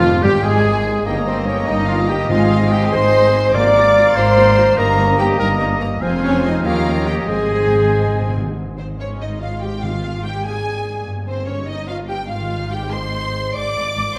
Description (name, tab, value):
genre	classical, dramatic, fast romantic movement for symphony orchestra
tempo	97 BPM (dotted quarters)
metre	6/8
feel	straight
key	Ab major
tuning	A4 = 441 Hz
part	rich symphonic violin section	melody	0.0-14.2 s	F4 to D6	-32 LUFS	equal	none
part	clear clarinet	second line	0.0-8.3 s	F4 to Eb5	-31 LUFS	equal	none
part	clear oboe	second line	0.0-8.4 s	F4 to F5	-28 LUFS	equal	none
part	concert flute	second line	0.0-8.4 s	F4 to Bb5	-30 LUFS	equal	none
part	rich studio violin section	second line	0.0-14.2 s	C5 to D6	-30 LUFS	equal	none
part	mellow bassoon	accompaniment	0.0-8.3 s	F3 to C4	-29 LUFS	equal	none
part	rich symphonic viola section	accompaniment	0.0-14.2 s	G3 to D5	-30 LUFS	equal	none
part	mellow French horn section	sustained chords	0.0-14.2 s	C4 to D5	-21 LUFS	equal	none
part	concert harp	arpeggios	0.0-14.2 s	G2 to C6	-31 LUFS	equal	none
part	clear trumpet	stabs	0.0-8.3 s	C4 to D5	-26 LUFS	equal	none
part	rich studio double bass section	bass	0.0-14.0 s	F1 to Eb2	-27 LUFS	equal	none
part	warm symphonic cello section	bass	0.0-14.2 s	Eb2 to Ab2	-26 LUFS	equal	none
part	timpani	percussion	0.0-4.1, 7.3-10.4 s	Ab2	-29 LUFS	equal	none
room	wet concert hall reverb, RT60 1.8 s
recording	none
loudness	-17 LUFS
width	mono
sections	0.0-8.6 A section; 8.6-14.2 B section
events	timpani fill 7.3-8.6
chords	0.0 Bb7/F; 1.1 Eb7/G; 2.3 Ab; 3.5 Bb7/Ab; 4.8 Eb/G; 6.0 Fm; 6.7 Eb7; 7.3 Ab; 9.8 Bb7/Ab; 11.1 Eb/G; 12.3 Ab; 13.6 Bb7/Ab